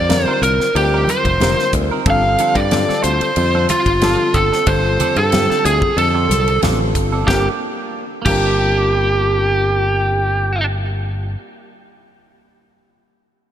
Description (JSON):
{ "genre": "electric jazz fusion", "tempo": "92 BPM", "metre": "4/4", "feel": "straight", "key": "G minor", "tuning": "A4 = 440 Hz", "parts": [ { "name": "biting lead guitar", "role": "melody", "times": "0.0-10.7 s", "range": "F4 to F5", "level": "-17 LUFS", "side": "right 1 dB", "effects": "overdrive" }, { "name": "overdriven reed electric piano", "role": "accompaniment", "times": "0.0-11.4 s", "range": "D3 to C5", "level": "-23 LUFS", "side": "left 5 dB", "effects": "fast tremolo" }, { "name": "modern bright fingered electric bass", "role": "bass", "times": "0.0-11.4 s", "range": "F1 to G2", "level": "-19 LUFS", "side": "equal", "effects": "none" }, { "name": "crisp fusion drum kit", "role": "drums", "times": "0.1-8.4 s", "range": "crash cymbal, hi-hat, kick drum, ride cymbal, snare drum", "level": "-23 LUFS", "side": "equal", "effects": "none" }, { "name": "congas", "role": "percussion", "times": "0.1-8.5 s", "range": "none", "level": "-26 LUFS", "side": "right 1 dB", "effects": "none" }, { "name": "clean electric guitar", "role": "stabs", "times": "0.3-11.9 s", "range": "F3 to Bb4", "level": "-27 LUFS", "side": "right 5 dB", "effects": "wide subtle chorus, digital delay" } ], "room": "moderate plate reverb, RT60 3.5 s", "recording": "bright 1980s-style digital production", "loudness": "-14 LUFS", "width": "side -10 dB against mid", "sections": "0.0-7.3 A section; 7.3-9.9 B section", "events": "none", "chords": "0.0 F9sus4; 2.1 G9sus4; 7.3 Gm", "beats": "0.11 0.76 1.41 | 2.06 2.72 3.37 4.02 | 4.68 5.33 5.98 6.63 | 7.29 7.94 8.59 9.24" }